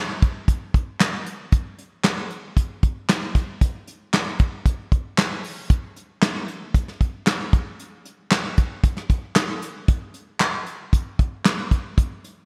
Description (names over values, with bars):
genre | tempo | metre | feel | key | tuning
pop | 115 BPM | 4/4 | straight | none | none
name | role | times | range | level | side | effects
soft brush drum kit | drums | 0.2-12.4 s | handclaps, hi-hat, kick drum, snare drum | -22 LUFS | equal | gated reverb
room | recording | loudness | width
light reverb | bright 1980s-style digital production | -23 LUFS | mono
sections
0.0-12.5 A section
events
none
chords
none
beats
0.48 1.00 | 1.53 2.05 2.57 3.09 | 3.62 4.14 4.66 5.18 | 5.71 6.23 6.75 7.27 | 7.80 8.32 8.84 9.36 | 9.89 10.41 10.93 11.45 | 11.98